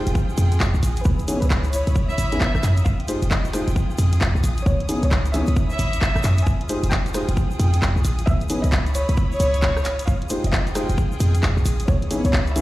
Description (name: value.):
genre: UK garage, two-step garage.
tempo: 133 BPM.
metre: 4/4.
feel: swing 63% on 16ths.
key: F minor.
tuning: A4 = 440 Hz.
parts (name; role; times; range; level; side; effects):
dark baby grand piano; stabs; 0.0-12.6 s; Fb3 to C5; -28 LUFS; left 1 dB; dub echo.
rich studio string section; texture; 0.0-12.6 s; Fb4 to Eb6; -32 LUFS; right 1 dB; sidechain pumping.
short 808-style bass; bass; 0.1-12.6 s; F1 to Gb2; -20 LUFS; equal; sidechain pumping.
garage drum kit; drums; 0.1-12.6 s; handclaps, hi-hat, rim click; -28 LUFS; equal; studio reverb.
egg shaker; percussion; 0.1-12.6 s; none; -40 LUFS; left 2 dB; none.
electronic kick drum; drums; 0.2-12.4 s; none; -21 LUFS; equal; studio reverb.
dark chamber violin section; melody; 1.1-12.6 s; Cb5 to Ab5; -29 LUFS; equal; dub echo.
room: small room ambience.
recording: played on a big sound system in a bare room, large studio reverb.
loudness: -18 LUFS.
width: side -17 dB against mid.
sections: 0.0-12.6 A section.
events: none.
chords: 0.0 Fm9; 1.1 Dbm9; 2.9 Fm9; 4.7 Dbm9; 6.5 Fm9; 8.3 Dbm9; 10.1 Fm9; 11.9 Dbm9.